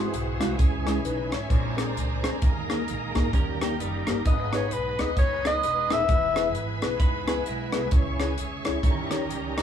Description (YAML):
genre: uptempo gospel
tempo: 131 BPM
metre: 4/4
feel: swing 60% on 8ths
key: G# harmonic minor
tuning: A4 = 440 Hz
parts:
  - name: mellow alto saxophone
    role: melody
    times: 0.0-0.4, 4.3-6.6 s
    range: G#4 to E5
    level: -26 LUFS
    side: left 2 dB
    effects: none
  - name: tine electric piano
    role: accompaniment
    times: 0.0-9.6 s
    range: G#2 to B#5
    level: -30 LUFS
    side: left 2 dB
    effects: fast stereo tremolo
  - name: bright tonewheel organ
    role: sustained chords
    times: 0.0-9.6 s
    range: E3 to G#5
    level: -33 LUFS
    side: right 3 dB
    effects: fast rotary speaker, overdrive, chorus vibrato
  - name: clear studio string section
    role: sustained chords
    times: 0.0-9.6 s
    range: G#4 to C#6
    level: -38 LUFS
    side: left 1 dB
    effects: none
  - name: upright bass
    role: bass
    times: 0.0-9.6 s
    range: D#1 to E2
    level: -33 LUFS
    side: right 1 dB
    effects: none
  - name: tight funk drum kit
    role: drums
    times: 0.1-9.6 s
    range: hi-hat, kick drum, rim click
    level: -25 LUFS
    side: equal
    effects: none
  - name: clean electric guitar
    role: second line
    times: 3.3-4.2, 7.0-7.9 s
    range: G3 to B4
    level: -35 LUFS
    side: right 5 dB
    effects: none
room: moderate stone room reverb, RT60 1.3 s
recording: band playing live in one room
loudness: -23 LUFS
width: side -9 dB against mid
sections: 0.0-9.6 A section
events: tine electric piano fill 0.0-0.6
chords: 0.0 G#7b13; 0.6 C#m; 1.5 A#9; 2.4 D#sus4; 3.3 D#; 4.3 G#m; 6.1 E; 7.9 C#m; 8.8 D#7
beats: 0.13 | 0.59 1.05 1.51 1.97 | 2.42 2.88 3.34 3.80 | 4.26 4.72 5.18 5.63 | 6.09 6.55 7.01 7.47 | 7.93 8.38 8.84 9.30